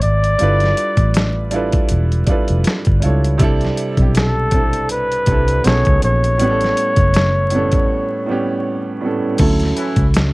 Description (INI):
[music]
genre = R&B, neo-soul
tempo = 80 BPM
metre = 4/4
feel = swing 56% on 16ths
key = unclear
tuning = A4 = 439 Hz
[part]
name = breathy flugelhorn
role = melody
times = 0.0-9.0 s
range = A4 to D5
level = -19 LUFS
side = left 1 dB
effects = none
[part]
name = warm grand piano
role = accompaniment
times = 0.0-10.3 s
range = A2 to E5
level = -20 LUFS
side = right 2 dB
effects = none
[part]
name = vintage muted fingered electric bass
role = bass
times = 0.0-10.3 s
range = E1 to D2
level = -17 LUFS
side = equal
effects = none
[part]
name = dusty soul sampler-style drum kit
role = drums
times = 0.0-10.3 s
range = crash cymbal, hi-hat, kick drum, snare drum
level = -18 LUFS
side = equal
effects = none
[part]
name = warm horn section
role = stabs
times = 9.8-10.1 s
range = E3 to E4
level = -25 LUFS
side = left 1 dB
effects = none
[sound]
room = little or no reverb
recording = dark, warm production, vinyl crackle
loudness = -13 LUFS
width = side -22 dB against mid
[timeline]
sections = 0.0-9.4 A section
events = break 7.9-9.4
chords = 0.4 G13; 3.4 C69; 5.6 B13; 6.4 A9; 9.4 Dmaj7